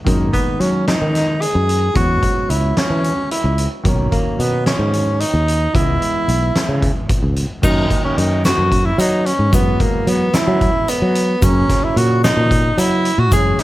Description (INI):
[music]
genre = progressive instrumental, band music in an uneven meter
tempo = 222 BPM (eighths)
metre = 7/8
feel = straight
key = F# mixolydian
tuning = A4 = 440 Hz
[part]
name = clear concert grand piano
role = accompaniment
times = 0.0-13.6 s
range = C#3 to D#5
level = -25 LUFS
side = right 1 dB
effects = none
[part]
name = sustaining fretless electric bass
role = bass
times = 0.1-13.5 s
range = B1 to F#3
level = -17 LUFS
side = equal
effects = none
[part]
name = oversized low-tuned drum kit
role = drums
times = 0.1-13.6 s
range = crash cymbal, hi-hat, kick drum, snare drum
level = -19 LUFS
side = equal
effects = none
[part]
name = warm tenor saxophone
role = melody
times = 0.3-13.6 s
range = A#3 to G#4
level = -19 LUFS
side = right 1 dB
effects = digital delay
[part]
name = tube shaker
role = percussion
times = 7.6-13.6 s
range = none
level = -32 LUFS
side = left 8 dB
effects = none
[sound]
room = light reverb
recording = none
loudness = -14 LUFS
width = side -16 dB against mid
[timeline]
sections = 0.0-7.6 A section; 7.6-13.6 B section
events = none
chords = 0.1 F#69; 2.0 E6; 3.9 Bmaj7; 5.7 C#m7; 7.6 D#m/F#; 9.5 Eadd9/F#; 11.4 F#